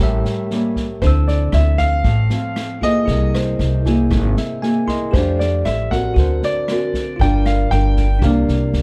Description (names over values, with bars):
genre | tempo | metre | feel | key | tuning
bossa nova | 117 BPM | 4/4 | straight | unclear | A4 = 437 Hz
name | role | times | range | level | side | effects
warm grand piano | melody | 0.0-8.7 s | C5 to G5 | -26 LUFS | equal | none
bell-like tine electric piano | accompaniment | 0.0-8.8 s | D4 to E6 | -29 LUFS | equal | none
nylon-string guitar | accompaniment | 0.0-8.8 s | A2 to Bb4 | -24 LUFS | equal | none
upright bass | bass | 0.0-8.8 s | G1 to F2 | -19 LUFS | equal | none
swinging big-band drum kit | drums | 0.2-8.8 s | kick drum, rim click, snare drum | -26 LUFS | equal | none
room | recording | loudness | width
light reverb | dark, warm production | -17 LUFS | mono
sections
0.0-8.8 A section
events
tine electric piano fill 4.1-5.1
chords
0.0 A7b9; 1.0 Dm9; 3.1 C7alt; 5.1 F69; 6.2 D7b13; 7.2 Gm7; 8.2 C7sus2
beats
0.51 | 1.02 1.53 2.05 2.56 | 3.08 3.59 4.11 4.62 | 5.13 5.65 6.16 6.68 | 7.19 7.71 8.22 8.74